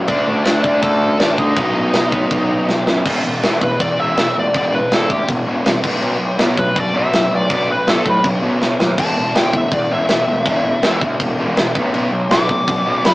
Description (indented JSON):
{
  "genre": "punk rock",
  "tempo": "162 BPM",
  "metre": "4/4",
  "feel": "straight",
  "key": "unclear",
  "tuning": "A4 = 438 Hz",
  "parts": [
    { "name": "sludgy distorted guitar", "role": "riff", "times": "0.0-13.1 s", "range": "E2 to D4", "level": "-23 LUFS", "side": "left 1 dB", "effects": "overdrive" },
    { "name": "sludgy distorted guitar", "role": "riff", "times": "0.0-13.1 s", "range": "E2 to D4", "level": "-24 LUFS", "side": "right 1 dB", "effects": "none" },
    { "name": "fuzz picked electric bass", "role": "bass", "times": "0.0-13.1 s", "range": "E1 to D3", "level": "-21 LUFS", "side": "equal", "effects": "overdrive" },
    { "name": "smooth overdriven lead guitar", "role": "melody", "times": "0.1-13.1 s", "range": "D4 to D6", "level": "-19 LUFS", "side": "equal", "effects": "none" },
    { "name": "tight metal drum kit", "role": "drums", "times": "0.1-13.1 s", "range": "crash cymbal, kick drum, snare drum", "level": "-18 LUFS", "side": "equal", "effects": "none" }
  ],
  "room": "light reverb",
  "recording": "rough rehearsal-room recording, small speaker sound",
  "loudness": "-14 LUFS",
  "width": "side -19 dB against mid",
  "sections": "0.0-3.1 A section; 3.1-13.1 B section",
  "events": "drum fill 2.7-3.1, 8.6-9.0; lead electric guitar solo 3.1-13.1",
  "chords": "0.1 D5; 1.6 B; 3.1 E5; 5.8 B5; 9.0 E5; 11.8 Bm"
}